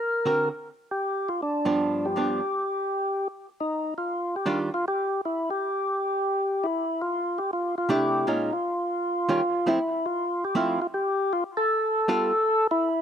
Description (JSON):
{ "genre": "jazz", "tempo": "157 BPM", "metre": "4/4", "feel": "swing 67% on 8ths", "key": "unclear", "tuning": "A4 = 440 Hz", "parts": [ { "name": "percussive tonewheel organ", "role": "melody", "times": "0.0-13.0 s", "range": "D4 to A#4", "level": "-25 LUFS", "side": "equal", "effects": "slow rotary speaker, overdrive, slapback echo" }, { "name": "archtop guitar, miked and amplified", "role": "accompaniment", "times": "0.3-4.7, 7.9-12.3 s", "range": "G2 to A#4", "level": "-26 LUFS", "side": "right 2 dB", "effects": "none" } ], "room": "little or no reverb", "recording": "recorded outdoors, with no room sound", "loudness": "-24 LUFS", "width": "side -8 dB against mid", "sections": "0.0-3.7 A section; 3.7-13.0 B section", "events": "none", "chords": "0.0 Daug7; 0.6 G7; 3.7 Ebmaj9; 5.2 N.C.; 6.7 C69; 8.3 Bbm7; 9.0 Eb9; 9.8 Fmaj7; 11.3 N.C.; 12.1 G9" }